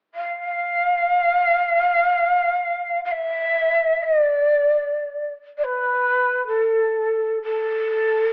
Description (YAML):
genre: japanese traditional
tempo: free time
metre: none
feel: none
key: unclear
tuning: A4 = 441 Hz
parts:
  - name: breathy shakuhachi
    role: melody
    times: 0.1-8.3 s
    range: A4 to F5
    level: -21 LUFS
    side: equal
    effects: none
room: moderate spring reverb, RT60 1.4 s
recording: cassette tape, AM radio sound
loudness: -21 LUFS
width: mono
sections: 0.0-8.3 A section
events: none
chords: none